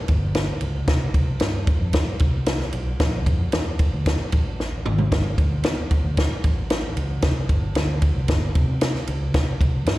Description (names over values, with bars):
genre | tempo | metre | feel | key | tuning
uptempo 1960s-style soul | 113 BPM | 4/4 | straight | C mixolydian | A4 = 440 Hz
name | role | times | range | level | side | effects
vintage muted fingered electric bass | bass | 0.1-10.0 s | G1 to C3 | -24 LUFS | equal | none
compact cocktail drum kit | drums | 0.1-10.0 s | kick drum, ride cymbal, snare drum, toms | -21 LUFS | equal | none
room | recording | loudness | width
light reverb | live gig heard through the venue's PA, recital hall reverb | -20 LUFS | side -17 dB against mid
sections
0.0-10.0 A section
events
drum fill 4.6-5.1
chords
none